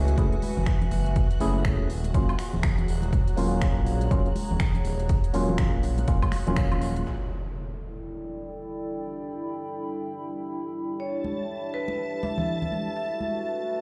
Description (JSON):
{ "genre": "deep house", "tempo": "122 BPM", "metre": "4/4", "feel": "swing 60% on 16ths", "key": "E dorian", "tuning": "A4 = 441 Hz", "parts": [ { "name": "percussive organ stab", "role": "stabs", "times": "0.0-7.1 s", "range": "F#3 to G#4", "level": "-32 LUFS", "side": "equal", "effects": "subtle chorus, sidechain pumping, analog delay" }, { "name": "smooth gliding synth bass", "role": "bass", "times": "0.0-7.0 s", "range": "D#1 to C#2", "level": "-30 LUFS", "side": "equal", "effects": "sidechain pumping" }, { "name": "string machine, violins", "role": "texture", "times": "0.0-7.1, 11.0-13.8 s", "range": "F#4 to A6", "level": "-44 LUFS", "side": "equal", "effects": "ensemble chorus, sidechain pumping" }, { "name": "warbly tape-like pad", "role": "texture", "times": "0.0-13.8 s", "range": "E4 to B5", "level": "-39 LUFS", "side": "equal", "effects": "chorus, built-in reverb, sidechain pumping" }, { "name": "deep house drum kit", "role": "drums", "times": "0.1-7.0 s", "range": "finger snaps, hi-hat, woodblock", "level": "-39 LUFS", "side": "equal", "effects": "studio reverb" }, { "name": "congas", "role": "percussion", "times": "0.1-7.0, 11.2-13.3 s", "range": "none", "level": "-35 LUFS", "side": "equal", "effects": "none" }, { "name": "electronic kick drum", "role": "drums", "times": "0.2-6.7 s", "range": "none", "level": "-28 LUFS", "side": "equal", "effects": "studio reverb" }, { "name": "deep dark ambient pad", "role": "sustained chords", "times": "8.0-13.8 s", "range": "G3 to E5", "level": "-39 LUFS", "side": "equal", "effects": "chorus, built-in reverb, sidechain pumping" }, { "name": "impact", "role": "sound effects", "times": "7.1-9.0 s", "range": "none", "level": "-39 LUFS", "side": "equal", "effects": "none" }, { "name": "vibraphone with medium hard mallets", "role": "melody", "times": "11.0-13.8 s", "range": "B4 to E5", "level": "-33 LUFS", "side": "equal", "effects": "analog delay" } ], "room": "light reverb, digital ambience", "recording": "played on a big sound system in a bare room, stone room reverb", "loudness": "-27 LUFS", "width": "mono", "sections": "0.0-7.1 A section; 7.1-13.8 B section", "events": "band accent 6.6; impact 7.1-9.0", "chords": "0.0 F#m7; 1.9 D#m7; 7.1 Em7; 12.7 F#m7", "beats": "0.18 0.67 | 1.16 1.65 2.15 2.64 | 3.13 3.62 4.11 4.60 | 5.09 5.59 6.08 6.57 | 7.06 7.55 8.05 8.54 | 9.03 9.52 10.01 10.51 | 11.00 11.49 11.98 12.47 | 12.96 13.46" }